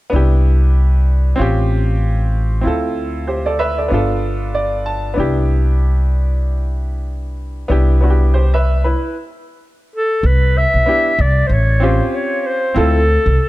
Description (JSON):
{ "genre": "hip hop, jazz-hop", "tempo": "95 BPM", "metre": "4/4", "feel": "swing 60% on 16ths", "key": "C major", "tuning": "A4 = 440 Hz", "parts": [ { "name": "clear upright piano", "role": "accompaniment", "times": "0.1-13.0 s", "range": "B3 to A5", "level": "-20 LUFS", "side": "equal", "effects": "none" }, { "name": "upright bass", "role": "bass", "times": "0.1-13.4 s", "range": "G1 to D2", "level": "-14 LUFS", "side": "equal", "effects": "none" }, { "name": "breathy clarinet", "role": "melody", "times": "10.0-13.5 s", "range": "A4 to E5", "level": "-16 LUFS", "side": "equal", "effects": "analog delay" } ], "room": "small room ambience", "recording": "dark, warm production", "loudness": "-13 LUFS", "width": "side -17 dB against mid", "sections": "0.1-10.2 A section; 10.2-13.5 B section", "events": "upright piano fill 4.2-5.2; stop 9.0-10.2", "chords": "0.1 Cmaj9; 1.4 A7alt; 2.6 Dm9; 3.9 G7; 5.2 Cmaj9; 11.5 A7alt; 12.8 Dm9" }